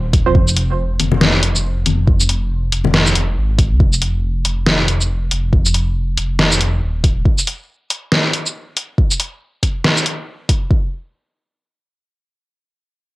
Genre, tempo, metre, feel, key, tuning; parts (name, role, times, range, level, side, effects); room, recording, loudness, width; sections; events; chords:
deep dubstep; 139 BPM; 4/4; swing 60% on 16ths, half-time; F minor; A4 = 440 Hz
dark detuned saw bass; bass; 0.0-7.2 s; Eb1 to C2; -18 LUFS; equal
dubstep drum kit; drums; 0.1-10.6 s; hi-hat, shaker, snare drum; -16 LUFS; equal
electronic kick drum; drums; 0.1-10.8 s; -14 LUFS; equal; overdrive
congas; percussion; 1.0-2.9 s; -19 LUFS; left 6 dB; dub echo
digital ambience; home recording on cassette; -14 LUFS; side -19 dB against mid
0.0-10.7 A section; 10.7-13.2 B section